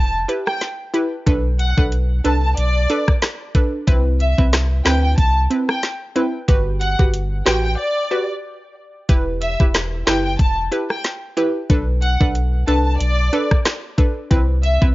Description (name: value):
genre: dancehall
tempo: 92 BPM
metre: 4/4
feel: swing 56% on 16ths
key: E minor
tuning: A4 = 440 Hz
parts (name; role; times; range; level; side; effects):
- rich studio violin section; melody; 0.0-14.8 s; D5 to A5; -23 LUFS; equal; cassette tape
- warm sub bass; bass; 0.0-14.9 s; E1 to D2; -19 LUFS; equal; none
- analog pluck; accompaniment; 0.3-14.9 s; C4 to B4; -22 LUFS; right 1 dB; chorus, sidechain pumping, cassette tape
- island pop drum kit; drums; 0.3-14.9 s; hi-hat, kick drum, rim click, snare drum; -17 LUFS; equal; cassette tape
room: digital ambience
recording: home recording on cassette, nothing above 7.5 kHz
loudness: -16 LUFS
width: side -18 dB against mid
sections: 0.0-9.1 A section; 9.1-14.9 A section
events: break 7.8-9.1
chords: 0.0 Em; 1.3 Bm7; 3.9 Cmaj7; 6.5 Gmaj7; 9.1 Em; 11.7 Bm7; 14.3 Cmaj7